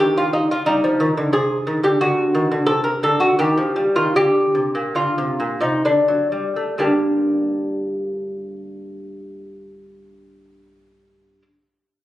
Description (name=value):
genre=classical, baroque-style dance for lute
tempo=62-92 BPM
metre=3/4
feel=rubato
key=G minor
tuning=A4 = 442 Hz
part: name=lute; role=solo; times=0.0-11.4 s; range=G2 to Bb4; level=-17 LUFS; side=equal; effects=none
room=moderate recital hall reverb, RT60 1.8 s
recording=recorded on a phone in the room, club reverb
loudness=-16 LUFS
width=side -15 dB against mid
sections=0.0-6.8 A section; 6.8-12.0 B section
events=slowing down 1.0-6.8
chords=0.0 Eb; 1.3 Ab/C; 3.4 Eb; 4.2 Gm; 5.8 D; 6.8 Gm